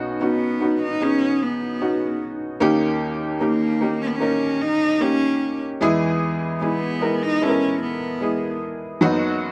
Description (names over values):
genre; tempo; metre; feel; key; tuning
pop; 75 BPM; 4/4; straight; B major; A4 = 439 Hz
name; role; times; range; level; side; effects
felt-muted upright piano; accompaniment; 0.0-9.5 s; F#1 to A#4; -23 LUFS; equal; none
warm cello; melody; 0.2-8.6 s; A#3 to D#4; -26 LUFS; equal; none
room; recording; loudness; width
moderate studio reverb, RT60 0.6 s; band playing live in one room; -22 LUFS; mono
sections
0.0-9.5 A section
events
none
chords
0.0 Badd9; 2.6 D#7; 5.8 E; 9.0 B/F#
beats
0.21 1.01 1.81 | 2.61 3.41 4.21 5.01 | 5.81 6.61 7.41 8.21 | 9.01